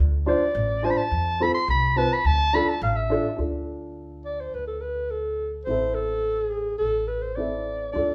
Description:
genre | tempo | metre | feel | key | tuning
klezmer | 106 BPM | 2/4 | straight | D minor | A4 = 435 Hz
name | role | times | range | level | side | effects
upright bass | bass | 0.0-8.1 s | A1 to F2 | -30 LUFS | equal | none
dark clarinet | melody | 0.3-8.1 s | G#4 to C6 | -27 LUFS | equal | none
warm upright piano | accompaniment | 0.3-8.1 s | C4 to C5 | -30 LUFS | equal | none
room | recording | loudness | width
moderate large studio reverb, RT60 0.8 s | band playing live in one room | -25 LUFS | mono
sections
0.0-3.4 A section; 3.4-8.1 B section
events
clarinet solo 0.0-3.4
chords
0.0 Dm; 1.1 F; 2.3 Dm; 5.7 Am

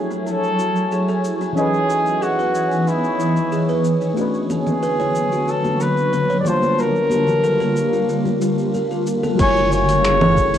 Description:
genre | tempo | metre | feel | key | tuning
sunset chillout | 92 BPM | 4/4 | straight | unclear | A4 = 439 Hz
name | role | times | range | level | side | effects
mellow FM electric piano | accompaniment | 0.0-10.6 s | E3 to A5 | -26 LUFS | left 1 dB | chorus, phaser, auto-pan, low-pass filter, cassette tape, analog delay, plate reverb
shimmering ambient pad | sustained chords | 0.0-10.6 s | D3 to G#5 | -21 LUFS | equal | chorus, built-in reverb, phaser, cassette tape
buzzing kalimba | arpeggios | 0.1-10.6 s | D#4 to C#5 | -25 LUFS | right 2 dB | low-pass filter, cassette tape, analog delay, plate reverb
deep house drum kit | drums | 0.1-10.6 s | congas, crash cymbal, finger snaps, hi-hat, shaker | -26 LUFS | right 1 dB | overdrive
warm flugelhorn | melody | 0.3-10.6 s | E4 to D5 | -20 LUFS | left 1 dB | cassette tape, analog delay, plate reverb
congas | percussion | 4.5-9.4 s | none | -28 LUFS | left 2 dB | none
round analog bass | bass | 9.4-10.6 s | F#1 | -24 LUFS | equal | none
electronic kick drum | drums | 9.4-10.5 s | none | -20 LUFS | equal | overdrive
room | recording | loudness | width
wet booth ambience, RT60 0.2 s | home recording on cassette | -16 LUFS | side -10 dB against mid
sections
0.0-9.4 A section; 9.4-10.6 B section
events
none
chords
0.0 F#m9; 1.6 C#m9; 4.2 Bm9; 6.5 Gm9; 9.4 F#m9

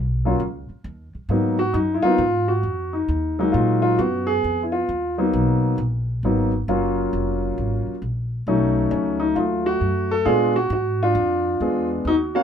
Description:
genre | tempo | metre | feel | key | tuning
jazz piano trio | 134 BPM | 4/4 | swing 66% on 8ths | unclear | A4 = 444 Hz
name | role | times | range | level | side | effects
upright bass | bass | 0.0-12.4 s | F1 to Bb2 | -25 LUFS | equal | none
warm concert grand piano | melody | 0.3-12.4 s | Gb3 to F5 | -20 LUFS | equal | none
room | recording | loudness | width
moderate club reverb, RT60 0.7 s | minimal, uncompressed stereo recording | -19 LUFS | side -8 dB against mid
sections
0.0-12.4 A section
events
none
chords
0.0 Eb7(no3); 1.3 Abm9; 6.7 Gbmaj9/F; 8.5 B7; 10.3 Bb7b9

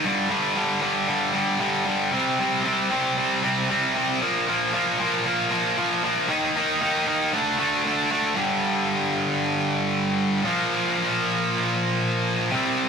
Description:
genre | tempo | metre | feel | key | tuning
rock | 115 BPM | 4/4 | straight | G minor | A4 = 438 Hz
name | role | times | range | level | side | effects
heavy high-gain guitar | solo | 0.0-12.9 s | G2 to Eb4 | -21 LUFS | equal | distortion
room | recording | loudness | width
moderate stone room reverb, RT60 1.1 s | rough rehearsal-room recording, warm saturation | -21 LUFS | side -6 dB against mid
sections
0.0-8.4 A section; 8.4-12.9 B section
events
none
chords
0.0 G5; 2.1 C5; 4.2 Bb5; 6.3 Eb5; 7.3 D5; 8.4 G5; 10.4 Bb5

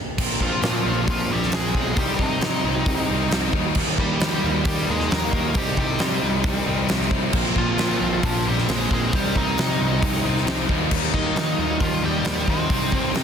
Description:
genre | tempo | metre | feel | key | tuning
quiet-loud alternative rock | 134 BPM | 4/4 | straight | C minor | A4 = 441 Hz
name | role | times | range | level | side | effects
overdriven electric guitar | riff | 0.2-13.2 s | Bb2 to Eb4 | -28 LUFS | left 16 dB | none
sludgy distorted guitar | riff | 0.2-13.2 s | Bb2 to Eb4 | -28 LUFS | right 12 dB | overdrive
fuzz picked electric bass | bass | 0.2-13.2 s | Bb1 to Eb3 | -27 LUFS | equal | overdrive
huge arena drum kit | drums | 0.2-13.2 s | crash cymbal, hi-hat, kick drum, snare drum | -24 LUFS | equal | none
nasal lead guitar with a parked wah | melody | 0.4-13.1 s | F3 to Eb5 | -26 LUFS | equal | overdrive, slapback echo
thick fuzz guitar | riff | 7.3-13.2 s | Bb2 to F4 | -28 LUFS | equal | distortion
room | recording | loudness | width
small room ambience | dense, heavily limited modern master | -19 LUFS | side -7 dB against mid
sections
0.2-13.2 A section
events
stop 0.0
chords
0.2 Bbsus2; 2.0 Cm; 3.5 Eb; 5.6 Cm; 7.3 Bbsus2; 9.1 Cm; 10.7 Eb; 12.7 Cm

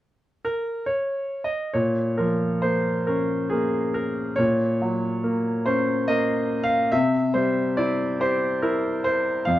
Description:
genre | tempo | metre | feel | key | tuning
classical, lyrical solo piano | 70 BPM | 3/4 | rubato | Bb minor | A4 = 436 Hz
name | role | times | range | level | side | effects
bright concert grand piano | solo | 0.4-9.6 s | F2 to F5 | -21 LUFS | equal | none
room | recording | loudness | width
light reverb | dark, warm production | -21 LUFS | side -14 dB against mid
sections
0.0-1.8 A section; 1.8-9.6 B section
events
none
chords
0.0 N.C.; 1.8 Bbm; 4.4 Gb/Bb; 6.9 C

